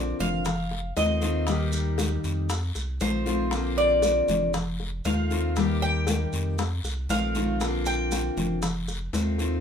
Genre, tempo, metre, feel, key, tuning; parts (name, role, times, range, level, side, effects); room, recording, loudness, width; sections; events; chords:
latin, Cuban son and guajira; 118 BPM; 4/4; straight; A4 = 440 Hz
picked steel-string acoustic guitar; accompaniment; 0.0-9.6 s; D3 to G4; -29 LUFS; left 3 dB
Cuban tres; arpeggios; 0.0-8.6 s; C5 to G5; -28 LUFS; equal
saturated sub bass; bass; 0.0-9.6 s; F1 to F2; -29 LUFS; equal
congas; percussion; 0.2-9.6 s; -31 LUFS; left 1 dB
guiro; percussion; 0.2-9.6 s; -40 LUFS; left 5 dB
maracas; percussion; 0.2-9.6 s; -39 LUFS; right 4 dB
bongos; percussion; 0.5-9.6 s; -35 LUFS; left 5 dB
moderate studio reverb, RT60 0.6 s; minimal, uncompressed stereo recording; -24 LUFS; side -7 dB against mid
0.0-9.6 A section
Cuban tres solo 0.0-9.6
0.5 F7; 1.5 Eb; 2.5 F7; 3.5 Bbadd9; 4.5 F7; 5.6 Eb; 6.6 F7; 7.6 Bbadd9; 8.6 F7